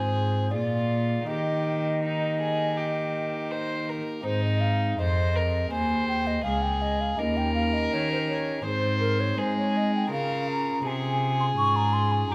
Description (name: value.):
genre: classical, baroque-style sonata movement with continuo.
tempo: 82 BPM.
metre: 4/4.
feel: straight.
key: Eb major, Ab major from 4.3 s.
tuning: A4 = 440 Hz.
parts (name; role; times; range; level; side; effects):
mellow baroque flute; melody; 0.0-12.3 s; Bb4 to Db6; -32 LUFS; equal; none.
rich violin; second line; 0.0-12.3 s; Eb4 to C5; -32 LUFS; equal; none.
pipe organ, stopped flute; accompaniment; 0.0-12.3 s; Db2 to Ab4; -34 LUFS; equal; none.
dark cello; bass; 0.0-12.3 s; Db2 to Ab3; -31 LUFS; equal; none.
room: moderate recital hall reverb, RT60 1.6 s.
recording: close, detailed microphones.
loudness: -26 LUFS.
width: mono.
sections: 0.0-4.3 A section; 4.3-12.3 A section.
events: none.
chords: 0.0 Fm/Ab; 0.5 Bb7; 1.3 Eb; 4.3 Ab; 7.2 Eb7; 8.7 Ab; 10.1 Db.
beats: 0.53 | 1.28 2.02 2.77 3.52 | 4.26 5.00 5.73 6.46 | 7.19 7.93 8.66 9.38 | 10.12 10.85 11.57 12.30.